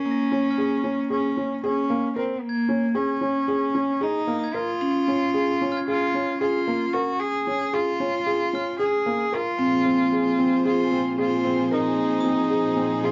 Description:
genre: contemporary instrumental, chamber music in an uneven meter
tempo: 226 BPM (eighths)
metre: 9/8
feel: straight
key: Bb minor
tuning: A4 = 439 Hz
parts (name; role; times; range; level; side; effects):
- rich cello; melody; 0.0-13.1 s; Bb3 to Ab4; -27 LUFS; equal; none
- glockenspiel with hard plastic mallets; texture; 0.0-13.1 s; Eb6 to C7; -43 LUFS; equal; none
- vibraphone with medium hard mallets; second line; 0.1-13.1 s; Bb3 to Db4; -29 LUFS; equal; none
- felt-muted upright piano; arpeggios; 0.3-13.1 s; Bb3 to Bb4; -29 LUFS; equal; none
- rich chamber string section; sustained chords; 9.6-13.1 s; Bb2 to C5; -32 LUFS; equal; none
room: moderate studio reverb, RT60 0.5 s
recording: worn, warbling old tape, cassette tape, warbly pitch drift, nothing above 7.6 kHz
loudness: -23 LUFS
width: mono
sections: 0.0-13.1 A section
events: none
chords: 0.0 Bbm7; 9.6 Fm/Bb

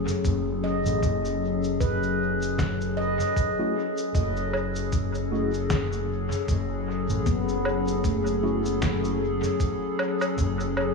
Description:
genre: ambient dub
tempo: 77 BPM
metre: 4/4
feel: swing 57% on 16ths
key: F# dorian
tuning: A4 = 440 Hz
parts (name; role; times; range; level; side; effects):
- warbly tape-like pad; sustained chords; 0.0-10.9 s; F#3 to A4; -28 LUFS; left 3 dB; chorus, built-in reverb
- handpan; arpeggios; 0.0-10.9 s; A3 to D#5; -32 LUFS; right 2 dB; dub echo
- overdriven fingered electric bass; bass; 0.0-10.9 s; F#1 to A1; -28 LUFS; equal; none
- electronic shaker, snare drum and woodblock; drums; 0.1-10.9 s; none; -33 LUFS; equal; studio reverb, dub echo
- electronic kick drum; drums; 0.2-10.6 s; none; -28 LUFS; equal; studio reverb
- mellow tine electric piano; stabs; 3.6-8.6 s; A3 to F#4; -35 LUFS; right 2 dB; analog chorus, dub echo
room: moderate echo chamber reverb, RT60 1.9 s, digital ambience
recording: small room ambience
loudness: -23 LUFS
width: side -3 dB against mid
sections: 0.0-10.9 A section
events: none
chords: 0.0 F#m

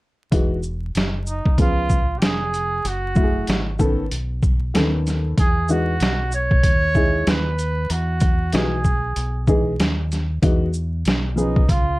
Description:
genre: hip hop, jazz-hop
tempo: 95 BPM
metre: 4/4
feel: swing 57% on 16ths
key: E major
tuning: A4 = 439 Hz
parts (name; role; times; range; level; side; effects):
- dark upright piano; accompaniment; 0.3-11.6 s; D#3 to A4; -22 LUFS; left 1 dB; none
- deep dub fingered electric bass; bass; 0.3-12.0 s; E1 to E2; -24 LUFS; equal; none
- trip hop sampler-style drum kit; drums; 0.3-11.9 s; hi-hat, kick drum, shaker, snare drum; -19 LUFS; equal; none
- mellow trumpet; melody; 1.3-12.0 s; D#4 to C#5; -24 LUFS; right 2 dB; none
room: light reverb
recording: dark, warm production, vinyl crackle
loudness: -18 LUFS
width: side -20 dB against mid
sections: 0.3-10.4 A section; 10.4-12.0 A section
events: none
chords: 0.3 Emaj9; 1.6 C#7; 2.8 F#m9; 4.1 B9; 5.4 Emaj9

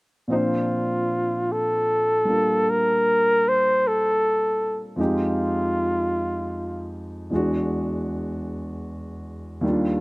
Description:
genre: jazz ballad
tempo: 52 BPM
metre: 4/4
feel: swing 67% on 8ths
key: Bb major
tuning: A4 = 439 Hz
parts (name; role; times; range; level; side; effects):
- warm flugelhorn; melody; 0.3-6.9 s; Eb4 to C5; -21 LUFS; equal; none
- warm concert grand piano; accompaniment; 0.3-10.0 s; Eb2 to C5; -25 LUFS; equal; none
room: little or no reverb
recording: recorded outdoors, with no room sound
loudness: -20 LUFS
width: side -25 dB against mid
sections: 0.3-10.0 A section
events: none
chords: 0.3 Bbmaj9; 5.0 Fm9; 7.3 E9

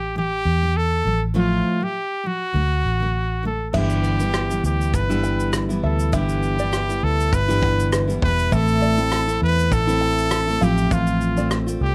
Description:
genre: acoustic pop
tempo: 100 BPM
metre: 4/4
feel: swing 55% on 16ths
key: G major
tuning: A4 = 442 Hz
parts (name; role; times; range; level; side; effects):
- bright trumpet; melody; 0.0-11.9 s; F4 to B4; -26 LUFS; equal; none
- picked steel-string acoustic guitar; accompaniment; 0.0-11.9 s; G2 to F4; -26 LUFS; equal; none
- vintage muted fingered electric bass; bass; 0.0-11.9 s; E1 to E2; -25 LUFS; equal; none
- open-back banjo; arpeggios; 3.7-11.8 s; B4 to G5; -33 LUFS; equal; none
- natural country drum kit; drums; 3.7-11.8 s; crash cymbal, kick drum, rim click, shaker; -29 LUFS; equal; none
room: light reverb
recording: close, detailed microphones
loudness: -21 LUFS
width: mono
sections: 0.0-3.7 A section; 3.7-11.9 B section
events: none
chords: 0.0 A5; 1.1 F/A; 2.5 D; 3.7 G6; 8.5 Am; 10.6 F/A

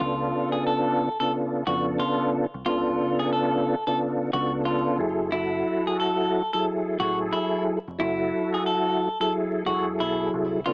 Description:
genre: hip hop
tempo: 90 BPM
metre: 4/4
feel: swing 62% on 16ths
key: F# minor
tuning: A4 = 439 Hz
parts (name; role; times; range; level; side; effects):
- clean electric guitar; melody; 0.0-10.7 s; E4 to A4; -27 LUFS; equal; high-pass filter, low-pass filter, cassette tape
- tonewheel organ; accompaniment; 0.0-10.7 s; C#3 to A4; -24 LUFS; equal; chorus vibrato, slow rotary speaker, cassette tape, high-pass filter, low-pass filter
- deep dub fingered electric bass; bass; 0.0-10.7 s; E1 to E#2; -37 LUFS; equal; none
room: light reverb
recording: home recording on cassette, vinyl crackle, small speaker sound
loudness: -22 LUFS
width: side -37 dB against mid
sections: 0.0-10.7 A section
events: none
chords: 0.0 C#7b9b13; 5.0 F#m9

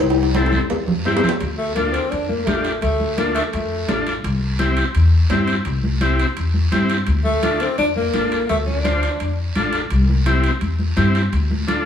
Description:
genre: latin, cumbia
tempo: 169 BPM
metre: 4/4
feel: straight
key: D minor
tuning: A4 = 440 Hz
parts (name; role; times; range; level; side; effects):
- clean electric guitar; melody; 0.0-1.0 s; none; barely audible; none; none
- warm tenor saxophone; second line; 0.0-4.0, 7.2-9.3 s; G3 to D4; -22 LUFS; left 2 dB; none
- upright bass; bass; 0.0-11.9 s; A1 to G2; -20 LUFS; left 1 dB; none
- timbales and cowbell; percussion; 0.1-11.9 s; none; -26 LUFS; left 1 dB; none
- combo organ; accompaniment; 0.3-11.9 s; C4 to C5; -23 LUFS; left 1 dB; none
- congas; percussion; 0.3-11.9 s; none; -27 LUFS; right 2 dB; none
- guiro; percussion; 0.3-11.9 s; none; -32 LUFS; right 3 dB; none
room: wet large studio reverb, RT60 1.2 s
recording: band playing live in one room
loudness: -16 LUFS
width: side -8 dB against mid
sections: 0.0-1.4 A section; 1.4-11.9 B section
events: drum fill 0.0-1.4; tenor saxophone solo 1.4-11.9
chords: 0.0 C; 1.4 Dm; 4.2 C; 7.1 Dm; 9.9 C; 11.3 Dm

